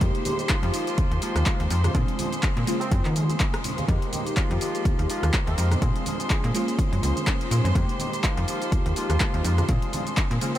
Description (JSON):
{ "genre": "filtered disco house", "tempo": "124 BPM", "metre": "4/4", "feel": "swing 56% on 16ths", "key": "F minor", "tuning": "A4 = 440 Hz", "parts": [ { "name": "funky polysynth comp", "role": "accompaniment", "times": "0.0-10.6 s", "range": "Db3 to G4", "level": "-31 LUFS", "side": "equal", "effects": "chorus, phaser, sidechain pumping, low-pass filter" }, { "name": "rich studio violin section", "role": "sustained chords", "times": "0.0-10.6 s", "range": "C5 to C6", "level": "-34 LUFS", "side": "left 1 dB", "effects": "vintage 12-bit sampler grit, sidechain pumping, low-pass filter" }, { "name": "electric guitar with an envelope filter", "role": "riff", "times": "0.0-10.6 s", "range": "F3 to Ab4", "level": "-37 LUFS", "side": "left 3 dB", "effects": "vintage 12-bit sampler grit, sidechain pumping, low-pass filter" }, { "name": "slap-like FM bass", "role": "bass", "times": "0.0-10.4 s", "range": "Db2 to Eb3", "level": "-24 LUFS", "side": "equal", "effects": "sidechain pumping, low-pass filter" }, { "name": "electronic kick drum", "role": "drums", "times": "0.0-10.3 s", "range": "none", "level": "-24 LUFS", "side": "equal", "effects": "overdrive" }, { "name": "punchy analog drum machine", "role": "drums", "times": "0.0-10.6 s", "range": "handclaps, hi-hat, rim click, shaker", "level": "-31 LUFS", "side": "equal", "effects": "overdrive, sidechain pumping on hats, sidechain pumping on perc" }, { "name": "tambourine and congas", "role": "percussion", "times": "0.0-10.6 s", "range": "none", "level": "-36 LUFS", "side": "right 4 dB", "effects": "none" }, { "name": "mellow horn section", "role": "melody", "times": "0.5-10.6 s", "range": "F3 to Bb4", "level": "-35 LUFS", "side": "equal", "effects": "sidechain pumping, low-pass filter, diffuse ambient delay" } ], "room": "light reverb", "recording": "none", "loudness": "-22 LUFS", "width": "side -13 dB against mid", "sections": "0.0-10.6 A section", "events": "none", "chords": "0.0 Fm11; 1.9 Bb9; 2.7 Gbmaj9 (rootless); 3.9 Fm11; 5.8 Bb9; 6.5 Gbmaj9; 7.8 Fm11; 9.7 Bb9" }